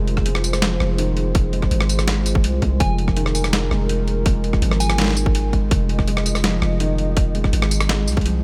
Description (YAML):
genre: half-time drum and bass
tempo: 165 BPM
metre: 4/4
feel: half-time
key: F minor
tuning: A4 = 436 Hz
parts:
  - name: dark analog pad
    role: sustained chords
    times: 0.0-8.4 s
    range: F4 to Eb5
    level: -32 LUFS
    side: equal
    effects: chorus, sidechain pumping
  - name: felt-muted upright piano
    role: arpeggios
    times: 0.0-8.4 s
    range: Eb3 to Ab3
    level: -28 LUFS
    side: equal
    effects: delay
  - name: long sustained 808-style bass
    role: bass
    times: 0.0-8.4 s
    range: F1 to C2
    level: -23 LUFS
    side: equal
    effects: tube saturation
  - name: boom bap sampler-style drum kit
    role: drums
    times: 0.1-8.3 s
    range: hi-hat, rim click, snare drum, tambourine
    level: -26 LUFS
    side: equal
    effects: studio reverb
  - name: electronic kick drum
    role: drums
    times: 0.2-8.2 s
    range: none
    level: -22 LUFS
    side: equal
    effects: overdrive, studio reverb
  - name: soft synth bell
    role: melody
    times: 2.8-5.1 s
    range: Ab5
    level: -34 LUFS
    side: equal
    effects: chorus, digital delay
room: digital ambience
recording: none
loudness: -19 LUFS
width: mono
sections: 0.0-8.4 A section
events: kick drops out 8.3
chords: 0.0 Fm